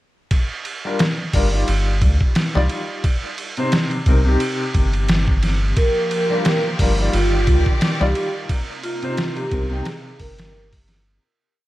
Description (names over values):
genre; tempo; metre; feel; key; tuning
trip hop; 88 BPM; 4/4; swing 56% on 16ths; C minor; A4 = 440 Hz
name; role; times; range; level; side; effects
trip hop sampler-style drum kit; drums; 0.3-11.1 s; hi-hat, kick drum, ride cymbal, snare drum; -20 LUFS; equal; none
felt-muted upright piano; accompaniment; 0.8-11.2 s; C3 to G5; -25 LUFS; left 2 dB; tremolo, tape echo
soft dub sub bass; bass; 1.3-11.2 s; G1 to D2; -18 LUFS; equal; none
vibraphone with soft mallets; melody; 5.8-10.7 s; F4 to Bb4; -24 LUFS; right 1 dB; vintage 12-bit sampler grit, tape echo
clear studio string section; sustained chords; 5.8-11.2 s; C3 to D5; -28 LUFS; left 1 dB; none
room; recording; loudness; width
small room ambience; vinyl crackle; -17 LUFS; side -16 dB against mid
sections
0.3-11.2 groove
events
fade-out 7.6-11.2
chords
0.3 Gm7; 1.7 Ebmaj7/G; 3.0 Cm; 5.8 Gm7; 7.1 Ebmaj7/G; 8.5 Cm7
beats
| 0.31 0.99 1.67 2.36 | 3.04 3.72 4.40 5.08 | 5.76 6.45 7.13 7.81 | 8.49 9.17 9.86 10.54